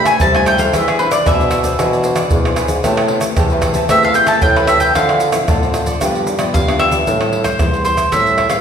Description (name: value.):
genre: samba and choro.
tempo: 114 BPM.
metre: 4/4.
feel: straight.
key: unclear.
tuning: A4 = 441 Hz.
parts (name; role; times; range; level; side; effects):
mandolin; melody; 0.0-8.6 s; G#4 to A5; -15 LUFS; right 1 dB; none.
cavaquinho; accompaniment; 0.0-7.1 s; E4 to A5; -22 LUFS; right 2 dB; none.
nylon-string guitar; accompaniment; 0.0-8.6 s; G2 to C5; -22 LUFS; left 5 dB; none.
mellow bassoon; bass; 0.0-8.6 s; E2 to D3; -20 LUFS; equal; none.
egg shaker, pandeiro, tamborim and surdo; percussion; 0.1-8.6 s; none; -17 LUFS; equal; none.
room: wet recital hall reverb, RT60 1.6 s.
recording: recorded in a church or concert hall.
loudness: -12 LUFS.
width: side -7 dB against mid.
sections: 0.0-7.1 A section; 7.1-8.6 B section.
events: mandolin solo 0.0-7.1.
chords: 0.0 C69; 0.7 E7b13; 2.8 Am9; 5.0 Dm9; 6.0 G7; 7.1 Am7.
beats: 0.20 | 0.73 1.26 1.79 2.31 | 2.84 3.37 3.90 4.42 | 4.95 5.48 6.01 6.54 | 7.07 7.59 8.12.